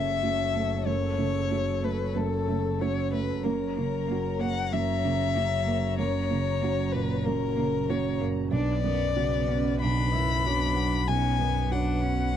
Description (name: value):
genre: neoclassical piano and strings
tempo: 94 BPM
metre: 4/4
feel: rubato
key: unclear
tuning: A4 = 440 Hz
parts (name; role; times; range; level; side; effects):
- dark violin; melody; 0.0-12.4 s; A4 to B5; -30 LUFS; left 8 dB; none
- felt-muted upright piano; accompaniment; 0.0-12.4 s; B1 to C#5; -29 LUFS; right 5 dB; none
- warm chamber string section; sustained chords; 0.0-12.4 s; F#3 to A#5; -38 LUFS; left 2 dB; none
- rich double bass; bass; 0.0-12.4 s; F#1 to B1; -32 LUFS; left 2 dB; none
- rich cello; second line; 0.2-12.4 s; A3 to E4; -34 LUFS; right 4 dB; tape echo
room: little or no reverb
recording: dry, close 1970s-style studio recording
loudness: -24 LUFS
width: side -10 dB against mid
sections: 0.0-12.4 A section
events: none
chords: 0.0 F#m7; 3.4 F#7; 8.5 Bmadd9